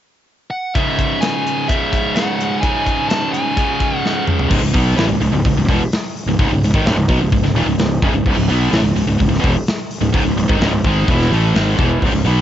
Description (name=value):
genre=heavy metal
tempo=128 BPM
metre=4/4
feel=straight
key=C# minor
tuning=A4 = 440 Hz
part: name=high-gain lead guitar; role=melody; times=0.5-4.2 s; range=E5 to A5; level=-21 LUFS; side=equal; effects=distortion, cassette tape
part: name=high-gain distorted guitar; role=riff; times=0.8-12.4 s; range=C#2 to B3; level=-17 LUFS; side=equal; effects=distortion, cassette tape
part: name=tight metal drum kit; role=drums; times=0.8-12.4 s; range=crash cymbal, hi-hat, kick drum, snare drum, toms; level=-20 LUFS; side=equal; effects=cassette tape
part: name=fuzz fingered electric bass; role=bass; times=4.5-12.4 s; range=C#1 to B1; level=-17 LUFS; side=equal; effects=overdrive
room=little or no reverb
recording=home recording on cassette, nothing above 7.8 kHz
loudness=-14 LUFS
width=side -11 dB against mid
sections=0.7-4.5 A section; 4.5-12.4 B section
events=drum fill 4.0-4.5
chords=0.0 N.C.; 0.7 C#m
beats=0.27 | 0.74 1.22 1.69 2.16 | 2.63 3.10 3.57 4.04 | 4.51 4.98 5.45 5.92 | 6.38 6.85 7.32 7.79 | 8.26 8.73 9.20 9.67 | 10.14 10.61 11.08 11.55 | 12.02